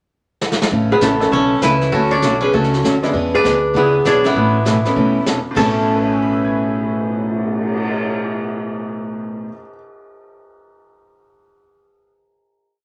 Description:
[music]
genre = country, western swing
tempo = 198 BPM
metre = 4/4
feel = swing 63% on 8ths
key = A major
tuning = A4 = 440 Hz
[part]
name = vintage brush drum kit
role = drums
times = 0.4-7.9 s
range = brushed snare drum, crash cymbal, cymbal swell, hi-hat, kick drum, snare drum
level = -26 LUFS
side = equal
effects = none
[part]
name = picked steel-string acoustic guitar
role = accompaniment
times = 0.7-9.5 s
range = A2 to A4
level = -22 LUFS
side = equal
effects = none
[part]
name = upright bass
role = bass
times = 0.7-9.4 s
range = E1 to E2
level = -27 LUFS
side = equal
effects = none
[part]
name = hollow-body jazz guitar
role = melody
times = 0.9-9.4 s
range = E4 to C#5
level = -20 LUFS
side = equal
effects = none
[part]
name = koto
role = second line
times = 0.9-9.4 s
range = A3 to E4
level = -24 LUFS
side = equal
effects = none
[part]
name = tack piano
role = accompaniment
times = 1.2-9.7 s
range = A2 to G#6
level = -25 LUFS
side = equal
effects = none
[sound]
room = wet studio reverb, RT60 0.5 s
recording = none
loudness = -17 LUFS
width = mono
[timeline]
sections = 0.0-0.7 pickup bar; 0.7-5.6 A section; 5.6-8.0 final chord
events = drum fill 0.4-0.7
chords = 0.0 N.C.; 0.7 A; 1.9 Dmaj7; 3.1 E7; 4.4 Aadd9

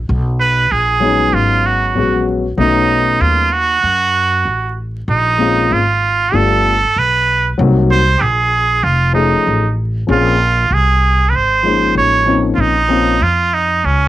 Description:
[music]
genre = hip hop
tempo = 96 BPM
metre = 4/4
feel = swing 64% on 16ths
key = Bb minor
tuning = A4 = 440 Hz
[part]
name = upright bass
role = bass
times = 0.0-14.1 s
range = F1 to F#2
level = -17 LUFS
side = equal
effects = tube saturation
[part]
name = trumpet with straight mute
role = melody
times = 0.4-14.1 s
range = Db4 to Db5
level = -13 LUFS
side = right 3 dB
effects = cassette tape
[part]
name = dark baby grand piano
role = accompaniment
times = 1.0-13.2 s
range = F3 to G#4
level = -16 LUFS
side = left 5 dB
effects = none
[sound]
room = moderate studio reverb, RT60 0.5 s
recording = home recording on cassette, vinyl crackle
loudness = -11 LUFS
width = side -14 dB against mid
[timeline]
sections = 0.0-14.1 A section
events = none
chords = 0.1 B6; 2.6 B9; 5.1 Bbm9; 6.3 G7; 7.6 Cm7b5; 8.8 F7alt; 10.1 Bbm9

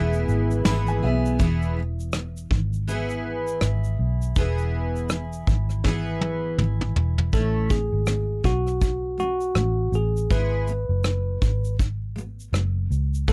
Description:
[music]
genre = acoustic pop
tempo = 81 BPM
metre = 4/4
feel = swing 60% on 16ths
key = unclear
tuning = A4 = 440 Hz
[part]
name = bell-like tine electric piano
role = melody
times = 0.0-1.0, 7.3-13.3 s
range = F#4 to B4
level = -30 LUFS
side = equal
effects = none
[part]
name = bright upright piano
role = accompaniment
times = 0.0-1.4 s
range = B3 to B5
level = -33 LUFS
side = equal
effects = none
[part]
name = picked steel-string acoustic guitar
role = accompaniment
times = 0.0-13.3 s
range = F#2 to G#4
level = -31 LUFS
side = equal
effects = double-tracked
[part]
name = vintage muted fingered electric bass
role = bass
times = 0.0-13.3 s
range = E1 to C#2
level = -27 LUFS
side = equal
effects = none
[part]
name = vintage brush drum kit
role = drums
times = 0.1-13.3 s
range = kick drum, rim click, shaker, snare drum, toms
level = -26 LUFS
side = equal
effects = none
[part]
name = tambourine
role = percussion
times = 0.7-0.9 s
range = none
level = -43 LUFS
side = equal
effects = none
[sound]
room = little or no reverb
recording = dry, close 1970s-style studio recording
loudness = -24 LUFS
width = mono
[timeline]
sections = 0.0-1.4 A section; 1.4-7.3 B section; 7.3-13.3 C section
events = upright piano fill 0.3-1.4; drum fill 5.8-7.3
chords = 0.0 E; 7.3 Amaj7; 10.3 E

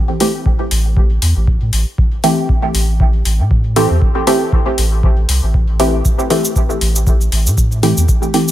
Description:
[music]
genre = dub techno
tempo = 118 BPM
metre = 4/4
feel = swing 56% on 16ths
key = A minor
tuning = A4 = 439 Hz
[part]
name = filtered dub chord stab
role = stabs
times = 0.2-8.5 s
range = E3 to G4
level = -17 LUFS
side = equal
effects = chorus, phaser, dub echo
[part]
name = electronic hi-hat and cabasa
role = drums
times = 0.2-8.5 s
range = none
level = -21 LUFS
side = left 2 dB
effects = none
[part]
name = electronic kick drum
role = drums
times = 0.5-8.2 s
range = none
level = -14 LUFS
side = equal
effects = none
[part]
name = soft dub sub bass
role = bass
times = 0.7-8.1 s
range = A1 to A2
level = -15 LUFS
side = equal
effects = sidechain pumping
[sound]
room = light reverb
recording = none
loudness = -12 LUFS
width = side -13 dB against mid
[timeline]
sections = 0.0-8.5 A section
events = none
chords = 0.0 Am7

